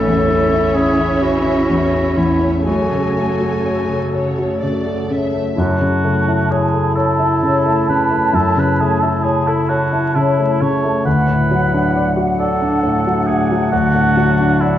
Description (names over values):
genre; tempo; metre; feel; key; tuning
cinematic, emotional film score for orchestra; 40-45 BPM (dotted quarters); 6/8; rubato; F# minor; A4 = 440 Hz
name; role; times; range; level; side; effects
bright clarinet; second line; 0.0-14.8 s; D4 to A4; -22 LUFS; equal; none
warm studio violin section; second line; 0.0-5.6 s; C#5 to G#5; -25 LUFS; left 2 dB; none
rich studio viola section; accompaniment; 0.0-5.3 s; C#3 to A4; -24 LUFS; right 2 dB; none
warm concert grand piano; accompaniment; 0.0-14.8 s; A1 to D5; -18 LUFS; equal; none
concert harp; arpeggios; 0.0-14.8 s; F#2 to C#6; -22 LUFS; left 3 dB; none
warm studio cello section; bass; 0.0-4.8 s; A3 to C#4; -23 LUFS; right 1 dB; none
large flute ensemble; second line; 5.6-14.8 s; F#5 to A5; -21 LUFS; right 2 dB; none
mellow oboe; second line; 5.6-14.8 s; E4 to C#5; -21 LUFS; right 2 dB; none
room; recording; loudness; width
moderate scoring stage reverb, RT60 1.6 s; vinyl crackle, nothing above 7.9 kHz; -14 LUFS; side -11 dB against mid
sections
0.0-5.6 A section; 5.6-14.8 A section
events
none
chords
0.0 A; 2.7 F#madd9; 11.1 D